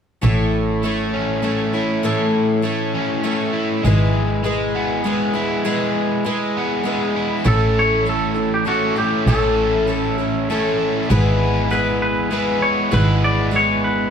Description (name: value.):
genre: rock.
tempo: 99 BPM.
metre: 3/4.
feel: straight.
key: A major.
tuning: A4 = 440 Hz.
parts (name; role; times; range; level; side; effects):
picked twelve-string acoustic guitar; accompaniment; 0.2-14.1 s; A2 to C#5; -21 LUFS; left 3 dB; none.
crunchy overdriven guitar; riff; 0.2-14.1 s; A2 to B4; -21 LUFS; right 1 dB; none.
muted double bass; bass; 0.2-14.1 s; G#1 to A1; -20 LUFS; right 1 dB; none.
twangy electric guitar; melody; 7.5-14.1 s; F#4 to D5; -21 LUFS; right 1 dB; spring reverb.
room: light reverb.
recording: none.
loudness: -16 LUFS.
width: side -7 dB against mid.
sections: 0.2-7.5 A section; 7.5-14.1 B section.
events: none.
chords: 0.2 A; 3.8 E/G#; 7.5 A; 11.1 E/G#.